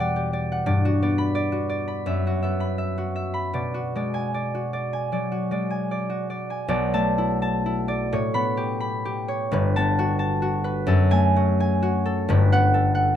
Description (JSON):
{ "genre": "classical, solo harp piece", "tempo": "74-91 BPM", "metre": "4/4", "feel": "rubato", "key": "B minor", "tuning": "A4 = 440 Hz", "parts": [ { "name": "concert harp", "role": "solo", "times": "0.0-13.2 s", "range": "G1 to B5", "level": "-21 LUFS", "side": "left 1 dB", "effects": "none" } ], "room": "little or no reverb", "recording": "close, detailed microphones", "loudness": "-21 LUFS", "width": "side -10 dB against mid", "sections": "0.0-6.7 A section; 6.7-13.2 A section", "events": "none", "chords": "0.0 Em9; 0.7 Gmaj7; 2.1 F#7sus4; 3.6 Bm6; 6.7 Bm7; 8.1 A9; 9.5 Gmaj9; 10.9 F#madd9; 12.3 Gmaj9" }